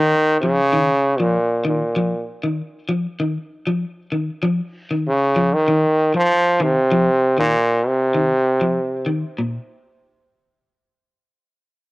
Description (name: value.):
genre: afrobeat.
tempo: 97 BPM.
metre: 4/4.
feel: straight.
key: Bb minor.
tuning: A4 = 440 Hz.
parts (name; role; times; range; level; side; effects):
brilliant trombone; melody; 0.0-9.1 s; Bb2 to F3; -16 LUFS; equal; cassette tape.
clean electric guitar; arpeggios; 0.0-9.6 s; Bb2 to F3; -21 LUFS; left 1 dB; cassette tape.
room: light reverb, small room ambience.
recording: home recording on cassette.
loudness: -17 LUFS.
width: side -20 dB against mid.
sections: 0.0-9.4 A section; 9.4-11.9 B section.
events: none.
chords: 0.0 Bbsus4 (rootless); 9.4 N.C..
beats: 0.11 0.73 1.35 | 1.97 2.59 3.21 3.83 | 4.44 5.06 5.68 6.30 | 6.92 7.53 8.15 8.77 | 9.38.